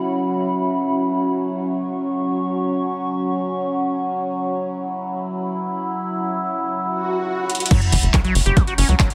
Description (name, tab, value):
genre	psychedelic trance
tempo	free time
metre	none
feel	none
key	unclear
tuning	A4 = 440 Hz
part	overtone-sweeping drone	sustained chords	0.0-9.1 s	F#3 to E4	-27 LUFS	equal	chorus, built-in reverb, sidechain pumping
part	warbly tape-like pad	texture	0.0-7.3 s	C#4 to C#6	-26 LUFS	equal	chorus, built-in reverb, sidechain pumping
part	swell and sub drop	sound effects	7.0-9.1 s	none	-26 LUFS	equal	none
part	techno drum kit	drums	7.5-9.1 s	crash cymbal, handclaps, hi-hat	-25 LUFS	equal	none
part	liquid acid bass	riff	7.7-9.1 s	E3 to G4	-26 LUFS	equal	phaser, cassette tape, sidechain pumping, digital delay
part	electronic kick drum	drums	7.7-9.1 s	none	-18 LUFS	equal	none
part	tight sequencer bass	bass	7.9-9.0 s	F#1 to C#2	-19 LUFS	equal	none
room	moderate lush hall reverb, RT60 1.9 s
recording	none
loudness	-21 LUFS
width	mono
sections	0.0-7.7 A section; 7.7-9.1 B section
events	swell 7.0-7.7; drum fill 7.5; drop 7.7-9.1; impact 7.7-9.1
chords	0.0 F#5